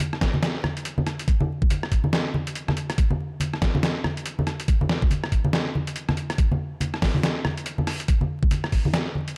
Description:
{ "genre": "dubstep", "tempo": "141 BPM", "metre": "4/4", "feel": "swing 60% on 16ths, half-time", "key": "none", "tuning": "none", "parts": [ { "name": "trip hop sampler-style drum kit", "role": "drums", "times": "0.0-9.3 s", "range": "hi-hat, rim click, snare drum", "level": "-29 LUFS", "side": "equal", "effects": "overdrive" }, { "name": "congas", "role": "percussion", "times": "0.0-9.3 s", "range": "none", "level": "-29 LUFS", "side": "equal", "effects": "none" }, { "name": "electronic kick drum", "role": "drums", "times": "0.2-8.8 s", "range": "none", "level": "-23 LUFS", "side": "equal", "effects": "none" } ], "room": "light reverb, digital ambience", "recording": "dark, warm production, vinyl crackle", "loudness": "-24 LUFS", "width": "mono", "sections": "0.0-9.4 A section", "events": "none", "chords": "none" }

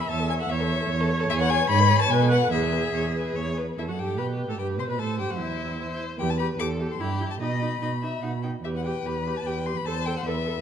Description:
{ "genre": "quick classical-period movement for string quartet", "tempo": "148 BPM", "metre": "3/4", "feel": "straight", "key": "E major, E minor from 3.8 s", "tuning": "A4 = 436 Hz", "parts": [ { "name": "rich violin", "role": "melody", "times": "0.0-10.6 s", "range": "E5 to D6", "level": "-28 LUFS", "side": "left 10 dB", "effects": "none" }, { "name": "rich violin", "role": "second line", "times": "0.0-10.6 s", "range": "G4 to G5", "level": "-33 LUFS", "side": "left 4 dB", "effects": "none" }, { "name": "clear viola", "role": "accompaniment", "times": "0.0-10.5 s", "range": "D#4 to E5", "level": "-30 LUFS", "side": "right 2 dB", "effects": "none" }, { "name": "warm cello", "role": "bass", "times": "0.0-10.6 s", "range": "E2 to C3", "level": "-27 LUFS", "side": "right 3 dB", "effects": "none" } ], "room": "moderate recital hall reverb, RT60 1.8 s", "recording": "dark, warm production", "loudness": "-23 LUFS", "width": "side -8 dB against mid", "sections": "0.0-3.8 A section; 3.8-10.6 A section", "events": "none", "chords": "0.1 A/E; 1.7 G#madd11; 2.1 B5; 2.5 E; 3.8 Em (rootless); 5.0 Am; 6.2 Em; 7.0 Em/G; 7.4 B; 8.6 Em; 9.9 Am/E" }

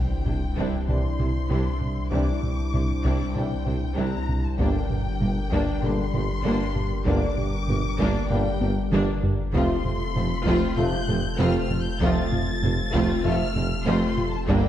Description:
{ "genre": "cinematic, hybrid orchestral and electronic film score", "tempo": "97 BPM", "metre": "4/4", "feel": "straight", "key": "unclear", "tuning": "A4 = 439 Hz", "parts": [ { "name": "warm symphonic violin section", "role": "melody", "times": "0.0-14.7 s", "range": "G5 to A6", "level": "-35 LUFS", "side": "left 5 dB", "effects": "none" }, { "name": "warm analog pad", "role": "sustained chords", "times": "0.0-14.7 s", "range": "G3 to C5", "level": "-34 LUFS", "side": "equal", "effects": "chorus" }, { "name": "fat analog bass", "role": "riff", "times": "0.0-14.7 s", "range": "C2 to G2", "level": "-30 LUFS", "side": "right 1 dB", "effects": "none" }, { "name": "saturated sub bass", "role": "bass", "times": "0.0-14.7 s", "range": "F1 to C2", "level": "-30 LUFS", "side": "equal", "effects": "none" }, { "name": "sub drop", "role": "sound effects", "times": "0.0-2.1 s", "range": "none", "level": "-32 LUFS", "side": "left 1 dB", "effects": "none" }, { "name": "rich symphonic violin section", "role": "second line", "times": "0.3-14.7 s", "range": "Bb3 to C5", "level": "-35 LUFS", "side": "left 4 dB", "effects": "none" }, { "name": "warm symphonic viola section", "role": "accompaniment", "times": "0.3-14.7 s", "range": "G3 to F4", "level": "-31 LUFS", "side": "right 1 dB", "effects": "none" }, { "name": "clear tuba", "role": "bass", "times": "0.3-14.6 s", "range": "F1 to C2", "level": "-33 LUFS", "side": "right 2 dB", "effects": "none" }, { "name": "warm symphonic cello section", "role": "bass", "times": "0.3-14.6 s", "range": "F2 to C3", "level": "-32 LUFS", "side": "right 2 dB", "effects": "none" }, { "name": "warm symphonic double bass section", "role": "bass", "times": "0.3-14.6 s", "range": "F1 to C2", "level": "-32 LUFS", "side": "right 3 dB", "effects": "none" }, { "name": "solo taiko drums", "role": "drums", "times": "0.3-14.7 s", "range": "none", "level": "-30 LUFS", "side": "equal", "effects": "none" }, { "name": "bright trombone section", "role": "sustained chords", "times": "0.9-14.7 s", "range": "C3 to G3", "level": "-37 LUFS", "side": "right 2 dB", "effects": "none" }, { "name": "warm French horn section", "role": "sustained chords", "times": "0.9-14.7 s", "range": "A3 to F4", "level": "-33 LUFS", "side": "left 5 dB", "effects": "none" } ], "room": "moderate scoring stage reverb, RT60 1.7 s", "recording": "dark, warm production", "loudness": "-22 LUFS", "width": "side -11 dB against mid", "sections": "0.0-14.7 A section", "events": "impact 0.0-2.1; drum fill 8.6-9.5", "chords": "0.0 Cadd9; 4.6 Gm; 9.5 F" }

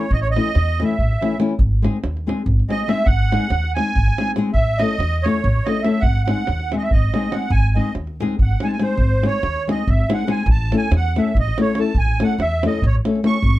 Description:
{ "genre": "balkan folk, Balkan wedding band", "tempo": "284 BPM (eighths)", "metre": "7/8", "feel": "straight", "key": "unclear", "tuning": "A4 = 440 Hz", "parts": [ { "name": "musette accordion", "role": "melody", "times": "0.0-13.6 s", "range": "B#4 to C#6", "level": "-23 LUFS", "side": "right 4 dB", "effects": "none" }, { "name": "nylon-string guitar", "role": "accompaniment", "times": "0.0-13.4 s", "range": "E3 to A4", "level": "-21 LUFS", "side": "left 3 dB", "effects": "none" }, { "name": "upright bass", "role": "bass", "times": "0.1-13.6 s", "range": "G#1 to E2", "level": "-19 LUFS", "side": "equal", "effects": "none" }, { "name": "davul", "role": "percussion", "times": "0.1-13.5 s", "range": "none", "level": "-22 LUFS", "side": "right 1 dB", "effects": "none" } ], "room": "moderate small room reverb, RT60 0.5 s", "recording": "dark, warm production", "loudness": "-16 LUFS", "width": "side -16 dB against mid", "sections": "0.0-13.6 A section", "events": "accordion solo 0.0-13.6", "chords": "0.0 A; 1.6 G#; 4.5 A; 6.0 G#; 10.5 A" }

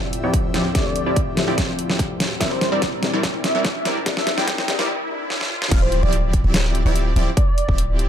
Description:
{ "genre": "future bass", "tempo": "145 BPM", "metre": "4/4", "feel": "half-time", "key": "unclear", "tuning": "A4 = 440 Hz", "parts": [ { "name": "felt-muted upright piano", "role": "accompaniment", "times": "0.0-5.7 s", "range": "D3 to E5", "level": "-29 LUFS", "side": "left 5 dB", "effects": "sidechain pumping, dub echo" }, { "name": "airy breathy pad", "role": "sustained chords", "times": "0.0-4.9 s", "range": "D2 to E5", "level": "-32 LUFS", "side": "equal", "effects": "chorus, sidechain pumping" }, { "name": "supersaw stab", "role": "riff", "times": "0.0-8.1 s", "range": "F3 to D5", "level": "-25 LUFS", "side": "equal", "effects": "sidechain pumping, low-pass filter, dub echo" }, { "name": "riser, swell and impact", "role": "sound effects", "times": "1.3-7.4 s", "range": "none", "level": "-32 LUFS", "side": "equal", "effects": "none" }, { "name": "dubstep drum kit", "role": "drums", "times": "0.1-8.1 s", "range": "crash cymbal, hi-hat, snare drum", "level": "-23 LUFS", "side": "equal", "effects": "overdrive" }, { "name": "electronic kick drum", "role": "drums", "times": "0.3-7.8 s", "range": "none", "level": "-21 LUFS", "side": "equal", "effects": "overdrive" }, { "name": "airy dreamy lead", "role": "melody", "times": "0.7-7.8 s", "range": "C5 to G5", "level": "-26 LUFS", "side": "equal", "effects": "chorus, sidechain pumping, digital delay" }, { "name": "warm 808-style bass", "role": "bass", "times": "5.7-8.1 s", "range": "D1", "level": "-19 LUFS", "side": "equal", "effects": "sidechain pumping" } ], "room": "light reverb, digital ambience", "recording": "dark, warm production, high-pass filter", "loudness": "-18 LUFS", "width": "side -9 dB against mid", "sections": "0.0-5.7 A section; 5.7-8.1 B section", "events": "build-up 0.0-5.7; drum fill 0.0-4.9, 5.3-5.7; filter sweep on supersaw synth 0.0-5.7; filter sweep 0.0-5.7; break 4.9-5.7; swell 4.9-5.7; drop 5.7-8.1; impact 5.7-7.4", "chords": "0.0 Dm11; 2.2 C9/E; 5.7 Dm11" }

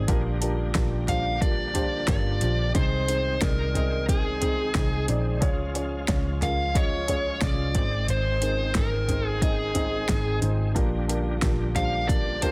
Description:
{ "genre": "piano-driven pop", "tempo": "90 BPM", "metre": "4/4", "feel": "straight", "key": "unclear", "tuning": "A4 = 443 Hz", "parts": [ { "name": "felt-muted upright piano", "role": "accompaniment", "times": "0.0-12.5 s", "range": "Ab2 to Eb5", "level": "-33 LUFS", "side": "equal", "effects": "none" }, { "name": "bright tonewheel organ", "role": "sustained chords", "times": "0.0-12.5 s", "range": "D3 to F4", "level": "-40 LUFS", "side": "equal", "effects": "overdrive, chorus vibrato, fast rotary speaker" }, { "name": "vintage muted picked electric bass", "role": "bass", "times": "0.0-12.5 s", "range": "G1 to Db2", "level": "-30 LUFS", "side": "equal", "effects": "none" }, { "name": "deep house drum kit", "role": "drums", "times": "0.1-12.5 s", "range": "hi-hat, kick drum, snare drum, toms", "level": "-29 LUFS", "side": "equal", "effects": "none" }, { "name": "dark smooth lead guitar", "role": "melody", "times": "1.1-12.5 s", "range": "Ab4 to F5", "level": "-32 LUFS", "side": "equal", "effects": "overdrive, tape echo" } ], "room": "light reverb", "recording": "dense, heavily limited modern master", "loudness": "-25 LUFS", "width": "mono", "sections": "0.0-12.5 A section", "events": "none", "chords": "0.1 Bb6; 2.8 Ab/C; 5.4 Db; 7.8 Ab; 10.8 Bb6" }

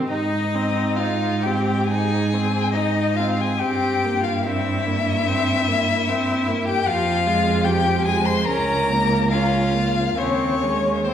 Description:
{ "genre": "classical, slow romantic movement for string quartet", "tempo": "66-78 BPM", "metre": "4/4", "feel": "rubato", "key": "Ab major", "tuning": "A4 = 440 Hz", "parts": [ { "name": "rich violin", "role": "second line", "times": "0.0-11.1 s", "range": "C4 to C5", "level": "-26 LUFS", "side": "left 2 dB", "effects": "none" }, { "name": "clear viola", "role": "accompaniment", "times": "0.0-11.1 s", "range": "F3 to Eb4", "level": "-25 LUFS", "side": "right 1 dB", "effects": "none" }, { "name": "rich violin", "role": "melody", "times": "0.1-11.1 s", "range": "C5 to C6", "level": "-23 LUFS", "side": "left 5 dB", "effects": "none" }, { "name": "warm cello", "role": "bass", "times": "0.1-11.1 s", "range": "Db2 to Ab2", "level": "-24 LUFS", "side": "right 3 dB", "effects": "none" } ], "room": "wet recital hall reverb, RT60 1.5 s", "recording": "recorded in a church or concert hall", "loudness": "-18 LUFS", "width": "side -9 dB against mid", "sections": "0.1-11.1 A section", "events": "none", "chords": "0.1 Ab; 3.6 C7/G; 6.9 Fm; 8.5 Bbm/Db; 10.2 Ab/Eb" }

